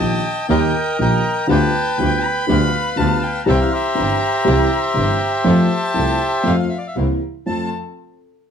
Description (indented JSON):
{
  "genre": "tango",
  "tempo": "120 BPM",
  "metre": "4/4",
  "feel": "rubato",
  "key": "F major",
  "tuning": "A4 = 444 Hz",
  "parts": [
    { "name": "bandoneon", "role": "melody", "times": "0.0-7.7 s", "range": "G4 to Bb5", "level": "-20 LUFS", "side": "equal", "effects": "none" },
    { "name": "warm violin", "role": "second line", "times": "0.0-7.7 s", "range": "F5 to B5", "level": "-25 LUFS", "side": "left 4 dB", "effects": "none" },
    { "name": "dark upright piano", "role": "accompaniment", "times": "0.0-7.7 s", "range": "G1 to A4", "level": "-20 LUFS", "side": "equal", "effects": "none" },
    { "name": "warm chamber string section", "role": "stabs", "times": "0.0-7.7 s", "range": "Bb3 to Bb4", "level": "-30 LUFS", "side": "equal", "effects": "none" },
    { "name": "clear double bass", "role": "bass", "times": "0.0-7.7 s", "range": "G1 to F2", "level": "-20 LUFS", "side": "right 1 dB", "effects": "none" }
  ],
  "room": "moderate studio reverb, RT60 0.7 s",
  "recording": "dark, warm production",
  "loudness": "-15 LUFS",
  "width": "side -7 dB against mid",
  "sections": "0.0-7.5 A section; 7.5-8.5 B section",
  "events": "none",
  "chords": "0.0 Eb; 1.5 G7/D; 3.5 C; 5.5 F; 7.0 C7; 7.5 F"
}